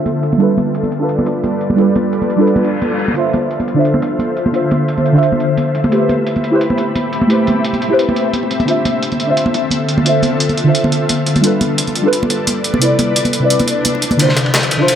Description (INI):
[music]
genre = liquid drum and bass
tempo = 174 BPM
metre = 4/4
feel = straight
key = D dorian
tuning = A4 = 442 Hz
[part]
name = deep mellow chord stab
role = accompaniment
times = 0.0-15.0 s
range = C3 to E5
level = -16 LUFS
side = right 1 dB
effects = chorus, phaser, digital delay
[part]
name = ethereal airy pad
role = sustained chords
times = 0.0-15.0 s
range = C3 to B5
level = -18 LUFS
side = left 1 dB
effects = ensemble chorus, built-in reverb, tremolo
[part]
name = jungle sampler-style drum kit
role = drums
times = 0.1-15.0 s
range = hi-hat, snare drum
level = -20 LUFS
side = right 1 dB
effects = high-pass filter on hats, high-pass filter on snare, high-pass filter on room
[part]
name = congas and bongos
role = percussion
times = 0.1-14.2 s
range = none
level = -19 LUFS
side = right 1 dB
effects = none
[part]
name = reverse cymbal and swell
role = sound effects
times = 2.6-3.2, 13.6-14.2 s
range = none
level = -26 LUFS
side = left 2 dB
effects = none
[part]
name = crunchy breakbeat drum kit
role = drums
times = 14.2-15.0 s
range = ride cymbal, snare drum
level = -18 LUFS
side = left 1 dB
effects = high-pass filter on cymbals, high-pass filter on snare, high-pass filter on room
[sound]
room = moderate lush hall reverb, RT60 1.9 s, small room ambience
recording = low-pass filter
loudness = -12 LUFS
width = side -9 dB against mid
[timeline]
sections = 0.0-14.2 A section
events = filter sweep 0.0-14.2; reverse cymbal 2.6-3.2; swell 13.6-14.2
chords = 0.4 G9; 3.2 Dm9; 5.9 Am9; 8.7 Dm9; 11.4 G9; 12.8 Cmaj7; 14.2 Dm9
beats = 0.06 | 0.40 0.75 1.09 1.44 | 1.78 2.13 2.47 2.82 | 3.16 3.51 3.85 4.20 | 4.54 4.89 5.23 5.58 | 5.92 6.27 6.61 6.96 | 7.30 7.64 7.99 8.34 | 8.68 9.02 9.37 9.71 | 10.06 10.40 10.75 11.09 | 11.44 11.78 12.13 12.47 | 12.82 13.16 13.51 13.85 | 14.20 14.54 14.89